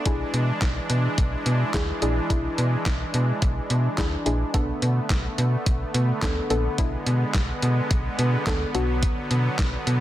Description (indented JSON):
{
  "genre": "dance-pop",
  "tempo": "107 BPM",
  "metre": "4/4",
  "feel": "straight",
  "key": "B dorian",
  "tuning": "A4 = 440 Hz",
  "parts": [
    { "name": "soft supersaw", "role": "sustained chords", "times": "0.0-10.0 s", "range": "D3 to D4", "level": "-29 LUFS", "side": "right 1 dB", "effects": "sidechain pumping" },
    { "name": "soft round pluck", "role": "accompaniment", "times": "0.1-9.7 s", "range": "B3 to A4", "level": "-28 LUFS", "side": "left 2 dB", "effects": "chorus" },
    { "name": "slap-like FM bass", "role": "bass", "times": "0.1-10.0 s", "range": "A#1 to B2", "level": "-24 LUFS", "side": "equal", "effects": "sidechain pumping" },
    { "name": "dusty soul sampler-style drum kit", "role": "drums", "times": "0.1-10.0 s", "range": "handclaps, hi-hat, kick drum, snare drum", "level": "-25 LUFS", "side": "equal", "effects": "none" }
  ],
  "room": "light reverb, digital ambience",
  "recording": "dense, heavily limited modern master",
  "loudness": "-21 LUFS",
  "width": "side -13 dB against mid",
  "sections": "0.0-10.0 A section",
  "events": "none",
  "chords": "0.1 E7; 4.5 Bm7; 8.7 D6"
}